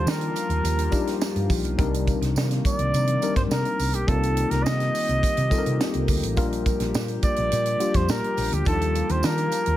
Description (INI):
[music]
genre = polished 1980s jazz-funk pop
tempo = 105 BPM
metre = 4/4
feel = straight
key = Bb major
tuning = A4 = 440 Hz
[part]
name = warm flugelhorn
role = melody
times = 0.0-9.8 s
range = G4 to Eb5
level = -27 LUFS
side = right 1 dB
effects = none
[part]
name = tine electric piano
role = accompaniment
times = 0.0-9.8 s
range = F3 to A5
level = -28 LUFS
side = left 4 dB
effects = analog chorus
[part]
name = chorused pulse-width pad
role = sustained chords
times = 0.0-9.8 s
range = Eb3 to G4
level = -34 LUFS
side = equal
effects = none
[part]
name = hollow-body short-scale fingered electric bass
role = bass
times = 0.0-9.8 s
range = A1 to Eb3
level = -25 LUFS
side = equal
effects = none
[part]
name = tight funk drum kit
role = drums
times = 0.1-9.8 s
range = hi-hat, kick drum, snare drum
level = -26 LUFS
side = right 1 dB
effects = none
[part]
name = tambourine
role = percussion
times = 0.1-9.7 s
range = none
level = -40 LUFS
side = right 9 dB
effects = none
[sound]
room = studio reverb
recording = none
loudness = -21 LUFS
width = side -13 dB against mid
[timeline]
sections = 0.0-9.8 A section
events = none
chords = 0.0 Ebmaj9#11; 1.8 Cm9; 4.1 F9sus4/C; 6.4 Bb6; 8.7 Ebmaj9#11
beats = 0.07 0.64 1.21 | 1.79 2.36 2.93 3.50 | 4.08 4.65 5.22 5.80 | 6.37 6.94 7.51 8.09 | 8.66 9.23